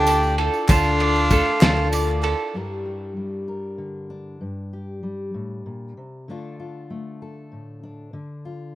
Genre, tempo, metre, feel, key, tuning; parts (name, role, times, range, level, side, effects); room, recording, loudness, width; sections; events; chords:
indie folk with a building arrangement; 64 BPM (dotted quarters); 6/8; straight; G minor; A4 = 439 Hz
accordion; melody; 0.0-1.9 s; F4 to G4; -24 LUFS; equal; digital delay
warm fiddle; second line; 0.0-1.9 s; D4; -26 LUFS; left 2 dB
picked twelve-string acoustic guitar; accompaniment; 0.0-2.5 s; D3 to A4; -27 LUFS; left 4 dB; lush chorus
bowl-back mandolin; arpeggios; 0.0-2.5 s; A4 to A5; -24 LUFS; right 5 dB; digital delay
fingered electric bass; bass; 0.0-2.3 s; D2; -23 LUFS; equal
cloth-damped thuddy drum kit; drums; 0.1-2.4 s; kick drum, ride cymbal, snare drum; -22 LUFS; equal
group handclap; percussion; 0.1-2.3 s; -35 LUFS; left 3 dB
tambourine; percussion; 0.1-2.1 s; -36 LUFS; right 4 dB
fingerpicked steel-string acoustic guitar; accompaniment; 2.5-8.8 s; G2 to Bb4; -31 LUFS; left 2 dB
light reverb; rough home demo mix; -19 LUFS; side -15 dB against mid
0.0-2.5 A section; 2.5-8.8 B section
0.0 Dm; 2.5 Gm; 6.3 Dm